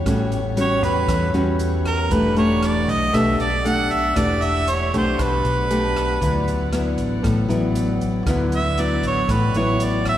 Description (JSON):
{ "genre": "bossa nova", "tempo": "117 BPM", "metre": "4/4", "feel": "straight", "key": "D major", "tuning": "A4 = 440 Hz", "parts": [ { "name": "nylon-string guitar", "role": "accompaniment", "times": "0.0-10.2 s", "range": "A2 to G4", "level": "-22 LUFS", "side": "left 1 dB", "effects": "none" }, { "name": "warm chamber string section", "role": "sustained chords", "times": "0.0-10.2 s", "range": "A3 to F#5", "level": "-31 LUFS", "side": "left 2 dB", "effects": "none" }, { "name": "fingered electric bass", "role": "bass", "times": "0.0-10.2 s", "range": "E1 to E2", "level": "-24 LUFS", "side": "equal", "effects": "none" }, { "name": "swinging big-band drum kit", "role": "drums", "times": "0.1-10.2 s", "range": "hi-hat, kick drum, rim click", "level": "-30 LUFS", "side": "equal", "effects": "none" }, { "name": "clear harmonica", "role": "melody", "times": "0.6-10.2 s", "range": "Bb4 to F#5", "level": "-22 LUFS", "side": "right 2 dB", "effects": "none" } ], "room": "wet church reverb, RT60 3.0 s", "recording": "recorded in a church or concert hall", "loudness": "-18 LUFS", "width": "side -12 dB against mid", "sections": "0.0-10.2 A section", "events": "harmonica solo 0.0-10.2", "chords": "0.0 A13; 2.1 Em11; 6.2 D69" }